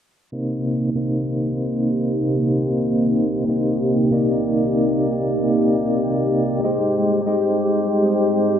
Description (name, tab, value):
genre	trip hop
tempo	free time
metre	none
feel	none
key	C minor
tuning	A4 = 439 Hz
part	percussive tonewheel organ	accompaniment	0.3-8.6 s	C3 to D5	-21 LUFS	equal	overdrive, stopped rotary speaker, tremolo, vintage 12-bit sampler grit, tape echo, plate reverb
part	string machine, cellos	sustained chords	0.3-8.6 s	C3 to C5	-22 LUFS	equal	ensemble chorus, plate reverb
part	bowed-like drone	texture	1.5-8.6 s	G4	-24 LUFS	left 2 dB	built-in reverb, plate reverb
room	wet small room reverb, RT60 0.5 s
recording	rough home demo mix, low-pass filter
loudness	-17 LUFS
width	side -9 dB against mid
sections	0.3-8.6 A section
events	filter sweep on string machine 0.3-8.6; filter sweep 0.3-8.6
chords	0.3 Cm7; 6.6 Abmaj7